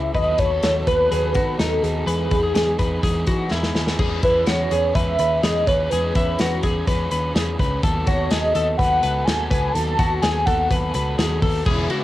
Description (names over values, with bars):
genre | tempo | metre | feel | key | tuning
jangly indie pop | 125 BPM | 4/4 | straight | E major | A4 = 444 Hz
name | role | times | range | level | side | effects
warm velvety synth lead | melody | 0.0-10.9 s | G#4 to A5 | -21 LUFS | equal | chorus, cassette tape
crunchy overdriven guitar | accompaniment | 0.0-12.0 s | D#3 to B4 | -28 LUFS | right 3 dB | cassette tape
twelve-string electric guitar | arpeggios | 0.0-12.0 s | D#4 to B4 | -26 LUFS | left 4 dB | cassette tape
vintage muted picked electric bass | bass | 0.0-11.9 s | E1 to E3 | -25 LUFS | equal | none
loose indie drum kit | drums | 0.1-12.0 s | crash cymbal, hi-hat, kick drum, ride cymbal, snare drum | -23 LUFS | equal | cassette tape
warm studio string section | sustained chords | 11.7-12.0 s | C#3 to E4 | -27 LUFS | equal | cassette tape
room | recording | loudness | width
small room reverb | home recording on cassette | -18 LUFS | side -15 dB against mid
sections
0.0-4.0 A section; 4.0-11.7 B section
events
drum fill 3.5-4.0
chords
0.1 B7/D#; 2.1 Emaj7; 4.0 E6; 7.8 B7